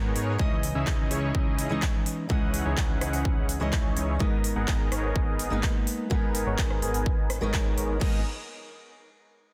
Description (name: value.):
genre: EDM, festival progressive house.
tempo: 126 BPM.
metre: 4/4.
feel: straight.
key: G# minor.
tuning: A4 = 440 Hz.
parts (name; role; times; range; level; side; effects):
fingerpicked steel-string acoustic guitar; accompaniment; 0.0-8.2 s; E3 to D#5; -35 LUFS; equal; sidechain pumping, tape echo.
supersaw chords; riff; 0.0-8.2 s; B3 to G#5; -35 LUFS; equal; cassette tape, sidechain pumping, low-pass filter, tape echo.
fat analog bass; bass; 0.0-8.2 s; G#1 to G#2; -34 LUFS; equal; sidechain pumping.
big-room dance drum kit; drums; 0.2-8.1 s; crash cymbal, handclaps, hi-hat, rim click; -37 LUFS; equal; overdrive.
electronic kick drum; drums; 0.4-8.1 s; none; -29 LUFS; equal; none.
room: digital ambience.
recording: dense, heavily limited modern master.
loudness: -27 LUFS.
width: mono.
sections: 0.0-8.0 A section; 8.0-9.5 B section.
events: filter sweep on supersaw synth 0.0-8.0.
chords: 0.4 C#madd9; 4.2 G#madd9.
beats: | 0.40 0.87 1.35 1.82 | 2.30 2.78 3.25 3.73 | 4.20 4.68 5.16 5.63 | 6.11 6.58 7.06 7.54 | 8.01.